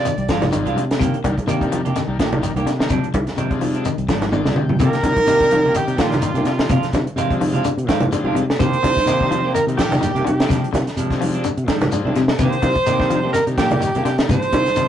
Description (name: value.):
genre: afrobeat.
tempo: 126 BPM.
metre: 4/4.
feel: swing 55% on 16ths.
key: C minor.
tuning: A4 = 437 Hz.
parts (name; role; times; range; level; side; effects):
bright alto saxophone; melody; 0.0-0.7, 4.8-14.9 s; F4 to D5; -21 LUFS; equal; none.
bright trumpet; second line; 0.0-0.7, 4.8-14.9 s; F4 to D5; -24 LUFS; right 5 dB; none.
overdriven combo organ; accompaniment; 0.0-14.3 s; Eb3 to G5; -28 LUFS; left 3 dB; none.
semi-hollow electric guitar; stabs; 0.0-14.9 s; Eb3 to G4; -26 LUFS; right 3 dB; none.
fingered electric bass; bass; 0.0-14.9 s; Ab1 to C3; -24 LUFS; equal; none.
twangy electric guitar; arpeggios; 0.1-14.9 s; Ab2 to F3; -25 LUFS; left 5 dB; none.
compact cocktail drum kit; drums; 0.1-14.9 s; hi-hat, kick drum, snare drum, toms; -22 LUFS; equal; none.
shekere; percussion; 0.1-14.9 s; none; -31 LUFS; left 1 dB; none.
congas; percussion; 0.4-14.8 s; none; -23 LUFS; right 1 dB; none.
room: moderate studio reverb, RT60 0.5 s.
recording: rough rehearsal-room recording, tube saturation, nothing above 10.8 kHz.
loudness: -16 LUFS.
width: side -10 dB against mid.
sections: 0.0-4.8 A section; 4.8-14.9 A section.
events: transistor combo organ fill 4.1-4.8; drum fill 4.2-4.8.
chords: 0.0 Fm6/Ab; 1.0 Cm9; 2.9 Fm13; 4.8 Cm9; 6.7 Fm6; 8.6 Cm9; 10.5 Fm69; 12.4 Cm9; 14.3 Bb9/Ab (rootless).